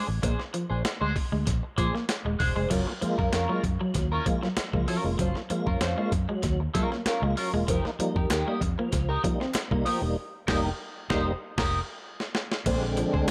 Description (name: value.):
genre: funk.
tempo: 96 BPM.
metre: 4/4.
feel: straight.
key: unclear.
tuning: A4 = 437 Hz.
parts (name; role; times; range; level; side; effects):
electric guitar at the edge of break-up; accompaniment; 0.0-13.3 s; Db4 to C5; -34 LUFS; equal; wah, lush chorus.
vintage muted fingered electric bass; bass; 0.1-13.2 s; Eb1 to Bb2; -32 LUFS; equal; none.
electric guitar at the edge of break-up; riff; 0.2-13.1 s; F3 to C4; -35 LUFS; equal; none.
breakbeat sampler-style drum kit; drums; 0.2-13.3 s; crash cymbal, hi-hat, kick drum, snare drum; -33 LUFS; equal; none.
tonewheel organ; stabs; 2.7-13.3 s; D3 to F4; -34 LUFS; equal; overdrive, chorus vibrato, slow rotary speaker.
group handclap; percussion; 8.3-13.3 s; none; -42 LUFS; equal; none.
room: light reverb.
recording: none.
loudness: -28 LUFS.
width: mono.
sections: 0.0-2.7 A section; 2.7-12.7 B section.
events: band accent 10.2-12.7; drum fill 12.0-12.7.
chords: 0.0 Bb9; 2.7 Gbmaj7; 7.7 F9sus4; 12.7 Bb9.